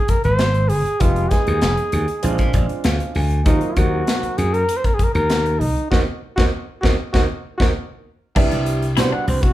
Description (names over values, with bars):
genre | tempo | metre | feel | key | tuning
electric jazz fusion | 98 BPM | 4/4 | straight | Eb dorian | A4 = 437 Hz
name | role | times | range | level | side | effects
trumpet with bucket mute | melody | 0.0-9.5 s | Eb4 to Gb5 | -22 LUFS | equal | none
modern studio drum kit | drums | 0.1-9.5 s | crash cymbal, hi-hat, kick drum, snare drum | -20 LUFS | equal | none
slap bass | bass | 0.2-9.5 s | F1 to C3 | -20 LUFS | equal | none
warm grand piano | accompaniment | 1.0-9.5 s | Gb3 to Ab5 | -25 LUFS | right 4 dB | none
clean electric guitar | stabs | 8.4-9.4 s | D4 to E4 | -27 LUFS | left 6 dB | none
room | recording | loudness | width
light reverb | band playing live in one room | -16 LUFS | side -14 dB against mid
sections
0.0-8.4 A section; 8.4-9.5 B section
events
grand piano fill 2.2-3.5, 7.4-8.4; band accent 5.9-8.4; muted trumpet solo 8.4-9.5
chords
0.0 Abmaj7; 1.0 Fm7b5; 2.2 Bb7; 3.5 Ebm6; 8.4 Cmaj9